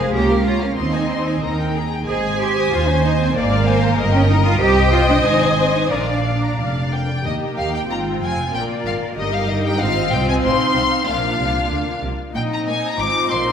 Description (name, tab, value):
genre	quick classical-period movement for string orchestra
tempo	94 BPM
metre	2/4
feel	rubato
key	Ab major, Eb major from 4.6 s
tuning	A4 = 440 Hz
part	rich symphonic violin section	melody	0.0-13.5 s	Eb5 to D6	-23 LUFS	left 3 dB	none
part	warm symphonic violin section	second line	0.0-13.5 s	Eb4 to Eb6	-24 LUFS	left 4 dB	none
part	clear symphonic viola section	accompaniment	0.0-13.5 s	Ab3 to Eb5	-24 LUFS	equal	none
part	rich symphonic cello section	bass	0.0-13.5 s	Eb2 to Ab4	-23 LUFS	right 2 dB	none
part	warm symphonic double bass section	bass	0.0-13.5 s	F1 to Bb2	-21 LUFS	right 2 dB	none
room	wet scoring stage reverb, RT60 1.5 s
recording	none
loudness	-16 LUFS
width	side -8 dB against mid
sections	0.0-7.2 A section; 7.2-13.5 B section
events	none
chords	0.1 Bbm/Db; 0.8 Ab/Eb; 2.1 Ab; 3.4 Bb7/Ab; 4.0 Eb/G; 4.6 Cm; 5.2 Ab; 5.9 Bb; 7.2 Eb; 7.9 Fm/Ab; 8.5 Bb; 9.2 Eb/G; 9.8 Ab; 10.4 F7(no3); 11.1 Bb; 12.3 Eb5; 13.0 Ab (rootless)